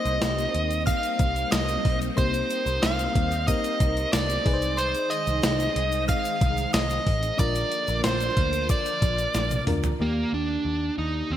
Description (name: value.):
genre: 1980s-style pop.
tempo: 92 BPM.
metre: 4/4.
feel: straight.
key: C minor.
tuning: A4 = 440 Hz.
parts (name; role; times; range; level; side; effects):
dark smooth lead guitar; melody; 0.0-11.4 s; Bb3 to F5; -27 LUFS; right 1 dB; overdrive.
glassy synth bell; second line; 0.0-9.6 s; C6 to F6; -35 LUFS; left 1 dB; chorus, digital delay.
FM electric piano; accompaniment; 0.0-11.4 s; Eb3 to D5; -33 LUFS; left 3 dB; chorus.
phased string machine; sustained chords; 0.0-10.0 s; D3 to F4; -34 LUFS; left 1 dB; ensemble chorus, phaser.
vintage muted picked electric bass; bass; 0.1-11.4 s; A1 to Eb2; -29 LUFS; equal; none.
clean 12-bit digital drum machine; drums; 0.1-10.0 s; hi-hat, kick drum, snare drum, tambourine, toms; -26 LUFS; equal; gated reverb.
egg shaker; percussion; 0.1-10.0 s; none; -46 LUFS; left 8 dB; none.
room: moderate lush hall reverb, RT60 2.0 s.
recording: bright 1980s-style digital production.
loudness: -22 LUFS.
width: side -11 dB against mid.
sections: 0.0-10.0 A section; 10.0-11.4 B section.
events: drum fill 9.3-10.0.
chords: 0.0 Cm7; 4.5 Ab/C; 7.4 Bb; 10.0 Ebmaj7.